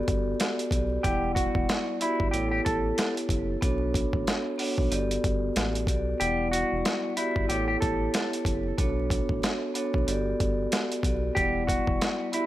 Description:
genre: hip hop, boom-bap hip-hop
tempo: 93 BPM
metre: 4/4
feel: swing 60% on 16ths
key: E dorian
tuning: A4 = 440 Hz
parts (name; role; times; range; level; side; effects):
- vibraphone with soft mallets; accompaniment; 0.0-12.5 s; G3 to F#5; -29 LUFS; equal; cassette tape, high-pass filter, low-pass filter
- round analog bass; bass; 0.0-12.0 s; E1 to B1; -32 LUFS; equal; none
- dusty soul sampler-style drum kit; drums; 0.1-12.5 s; hi-hat, kick drum, snare drum; -29 LUFS; equal; overdrive
- mellow electric guitar; melody; 1.0-12.5 s; E4 to A4; -30 LUFS; equal; lush chorus, high-pass filter, low-pass filter, ping-pong delay
room: light reverb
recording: vinyl crackle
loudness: -24 LUFS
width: side -14 dB against mid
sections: 0.0-12.5 A section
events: kick muted 6.2-6.8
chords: 0.0 Gmaj7; 1.0 Em7; 2.3 A7; 3.6 Bm7; 4.9 Gmaj7; 6.2 Em7; 7.5 A7; 8.8 Bm7; 10.1 Gmaj7; 11.4 Em7

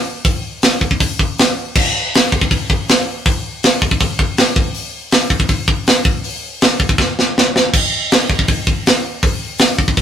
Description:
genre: punk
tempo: 161 BPM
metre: 4/4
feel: straight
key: none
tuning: none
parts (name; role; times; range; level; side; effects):
- tight metal drum kit; drums; 0.2-10.0 s; crash cymbal, hi-hat, kick drum, snare drum; -13 LUFS; equal; none
room: light reverb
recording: rough rehearsal-room recording, warm saturation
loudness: -13 LUFS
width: side -9 dB against mid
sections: 0.0-1.8 A section; 1.8-10.0 B section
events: drum fill 7.0-7.7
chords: none

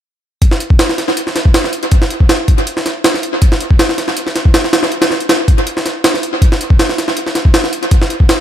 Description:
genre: drum and bass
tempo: 160 BPM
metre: 4/4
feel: straight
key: none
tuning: none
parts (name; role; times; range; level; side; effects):
- jungle sampler-style drum kit; drums; 0.4-8.4 s; hi-hat, kick drum, snare drum; -10 LUFS; equal; overdrive, dub echo
room: light reverb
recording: echo-heavy mix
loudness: -11 LUFS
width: side -11 dB against mid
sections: 0.4-8.4 A section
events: none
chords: none

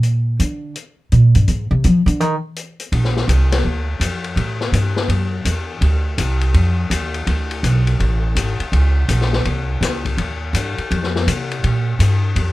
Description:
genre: jazz, small-group swing and bop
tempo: 165 BPM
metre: 4/4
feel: swing 64% on 8ths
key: Bb major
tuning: A4 = 442 Hz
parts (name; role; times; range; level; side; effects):
- upright bass; bass; 0.0-12.5 s; Ab1 to F3; -16 LUFS; equal; none
- open jazz drum kit; drums; 0.0-12.5 s; hi-hat, kick drum, ride cymbal, snare drum; -23 LUFS; left 4 dB; none
room: little or no reverb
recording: none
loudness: -15 LUFS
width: side -18 dB against mid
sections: 0.0-2.9 A section; 2.9-12.5 B section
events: upright bass solo 0.0-2.9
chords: none

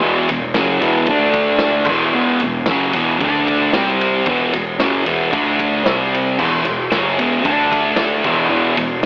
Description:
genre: garage rock duo or trio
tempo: 113 BPM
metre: 4/4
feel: straight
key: E minor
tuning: A4 = 439 Hz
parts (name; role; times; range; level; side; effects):
- thick fuzz guitar; riff; 0.0-9.1 s; E2 to D4; -18 LUFS; equal; distortion
- solid FM bass; bass; 0.0-9.0 s; E1 to D2; -40 LUFS; equal; overdrive
- vintage drum kit; drums; 0.3-9.1 s; crash cymbal, kick drum, ride cymbal, snare drum; -23 LUFS; equal; cassette tape
room: light reverb, small room ambience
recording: home recording on cassette, AM radio sound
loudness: -17 LUFS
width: mono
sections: 0.0-9.1 A section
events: none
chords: 0.0 E5; 1.1 D5; 1.9 E5; 3.2 D5; 3.7 C5; 4.3 E5; 5.3 D5; 5.9 C5; 6.4 E5; 7.5 D5; 8.2 E5

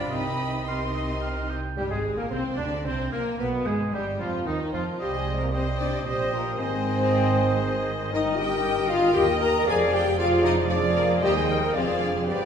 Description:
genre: quick classical-period movement for symphony orchestra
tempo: 106-119 BPM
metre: 3/4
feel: rubato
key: C minor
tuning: A4 = 440 Hz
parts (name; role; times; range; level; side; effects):
- rich studio violin section; melody; 0.0-12.5 s; G3 to C6; -36 LUFS; left 3 dB; none
- clear oboe; second line; 0.0-12.5 s; Bb3 to G5; -34 LUFS; right 2 dB; none
- mellow hollow silver concert flute; second line; 0.0-12.5 s; C4 to Ab5; -36 LUFS; left 5 dB; none
- rich chamber violin section; second line; 0.0-12.5 s; Eb4 to Bb5; -35 LUFS; left 2 dB; none
- warm clarinet; second line; 0.0-12.5 s; Eb3 to F5; -34 LUFS; left 1 dB; none
- mellow bassoon; accompaniment; 0.0-12.5 s; Eb3 to D4; -33 LUFS; right 2 dB; none
- rich studio viola section; accompaniment; 0.0-12.5 s; Eb3 to Eb5; -32 LUFS; right 2 dB; none
- rich studio cello section; bass; 0.0-12.5 s; Eb2 to D3; -32 LUFS; right 3 dB; none
- rich studio double bass section; bass; 0.0-12.5 s; F1 to Eb2; -32 LUFS; right 3 dB; none
- warm French horn section; sustained chords; 1.8-12.5 s; Eb3 to Bb4; -26 LUFS; left 2 dB; none
room: wet recital hall reverb, RT60 1.5 s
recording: recorded in a church or concert hall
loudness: -22 LUFS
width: side -7 dB against mid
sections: 0.0-1.8 A section; 1.8-12.5 A section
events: none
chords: 0.1 Cm; 1.8 C5; 3.4 G7; 5.0 Cm; 6.6 Ab; 8.1 Eb/G; 9.7 Ddim/F; 11.2 Cm/Eb; 11.8 Ddim/F

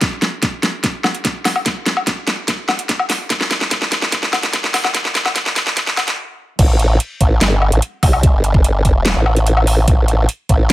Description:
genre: heavy wobble dubstep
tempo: 146 BPM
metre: 4/4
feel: half-time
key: A minor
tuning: A4 = 440 Hz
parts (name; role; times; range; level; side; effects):
- dubstep drum kit; drums; 0.0-10.7 s; crash cymbal, hi-hat, snare drum, woodblock; -17 LUFS; equal; none
- electronic kick drum; drums; 0.0-10.6 s; none; -15 LUFS; equal; none
- formant-sweep wobble bass; bass; 6.6-10.7 s; E1 to C2; -14 LUFS; equal; chorus, overdrive
room: light reverb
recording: high-pass filter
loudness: -14 LUFS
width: side -16 dB against mid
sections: 0.0-6.6 A section; 6.6-10.7 B section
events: build-up 0.0-6.6; drum fill 0.0-6.2; filter sweep 0.0-6.6; stop 6.2-6.6; drop 6.6-10.7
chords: none

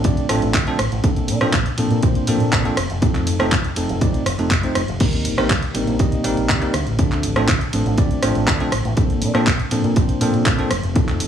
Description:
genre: nu-disco, nu disco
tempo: 121 BPM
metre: 4/4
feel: straight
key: Bb major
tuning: A4 = 439 Hz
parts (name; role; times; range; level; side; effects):
- bell-like tine electric piano; accompaniment; 0.0-11.3 s; F3 to Eb5; -22 LUFS; equal; fast stereo tremolo, sidechain pumping, analog delay
- fingered electric bass with an envelope filter; bass; 0.0-11.3 s; F1 to Bb2; -22 LUFS; equal; none
- electronic kick drum; drums; 0.0-11.1 s; none; -19 LUFS; equal; none
- house drum kit; drums; 0.0-11.3 s; crash cymbal, handclaps, hi-hat, ride cymbal, rim click; -23 LUFS; right 1 dB; none
room: little or no reverb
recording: dry, gritty hardware recording, transformer saturation, cassette tape, small room reverb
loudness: -16 LUFS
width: side -9 dB against mid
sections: 0.0-11.3 A section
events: none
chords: 0.0 Dm7; 1.0 Bbmaj9; 2.8 F7; 5.0 Eb6; 6.7 Dm7; 9.0 Bbmaj9; 10.7 F7

